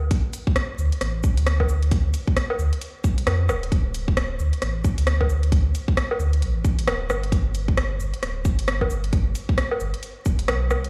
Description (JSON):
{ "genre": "future garage", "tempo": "133 BPM", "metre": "4/4", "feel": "swing 60% on 16ths", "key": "D dorian", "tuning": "A4 = 440 Hz", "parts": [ { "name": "warm sub bass", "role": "bass", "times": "0.0-10.9 s", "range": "D1 to F2", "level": "-25 LUFS", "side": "equal", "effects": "sidechain pumping" }, { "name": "electronic kick drum", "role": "drums", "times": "0.1-10.4 s", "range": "none", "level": "-23 LUFS", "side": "equal", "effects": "overdrive, studio reverb" }, { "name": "garage drum kit", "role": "drums", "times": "0.1-10.9 s", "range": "cabasa, hi-hat, rim click, woodblock", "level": "-29 LUFS", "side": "equal", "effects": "overdrive, studio reverb" } ], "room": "light reverb, digital ambience", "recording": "played on a big sound system in a bare room, large studio reverb, vinyl crackle", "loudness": "-23 LUFS", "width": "mono", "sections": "0.1-10.9 A section", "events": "none", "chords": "none" }